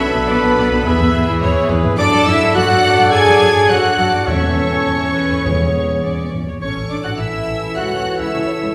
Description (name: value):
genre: classical, dramatic, fast romantic movement for symphony orchestra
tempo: 105 BPM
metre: 4/4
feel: rubato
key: A major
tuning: A4 = 440 Hz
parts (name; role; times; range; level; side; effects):
- rich symphonic violin section; melody; 0.0-8.7 s; B5 to G#6; -27 LUFS; equal; none
- mellow oboe; second line; 0.0-8.7 s; B4 to G#5; -24 LUFS; equal; none
- rich studio violin section; second line; 0.0-8.7 s; B4 to G#5; -27 LUFS; equal; none
- silver concert flute; second line; 0.0-8.7 s; B4 to G#5; -26 LUFS; equal; none
- clear symphonic viola section; accompaniment; 0.0-8.7 s; A4 to E5; -26 LUFS; equal; none
- mellow French horn section; sustained chords; 0.0-8.7 s; B3 to G#4; -24 LUFS; equal; none
- warm trombone section; sustained chords; 0.0-8.7 s; E3 to E4; -27 LUFS; equal; none
- mellow trumpet section; stabs; 0.0-8.7 s; G#4 to A4; -25 LUFS; equal; none
- rich chamber double bass section; bass; 0.0-8.7 s; A1 to F#2; -24 LUFS; equal; none
- rich symphonic cello section; bass; 0.0-8.7 s; B3 to G#4; -25 LUFS; equal; none
- timpani; percussion; 4.3-6.3 s; E2; -24 LUFS; equal; none
room: wet recital hall reverb, RT60 1.4 s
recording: recorded in a church or concert hall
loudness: -15 LUFS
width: mono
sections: 0.0-8.7 A section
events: none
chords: 0.0 Bm7; 0.8 E; 2.0 D/F#; 4.3 A/E; 5.4 E; 6.6 A; 7.8 A/C#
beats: 0.28 0.85 1.41 | 1.97 2.54 3.11 3.68 | 4.27 4.85 5.45 6.03 | 6.62 7.19 7.76 8.34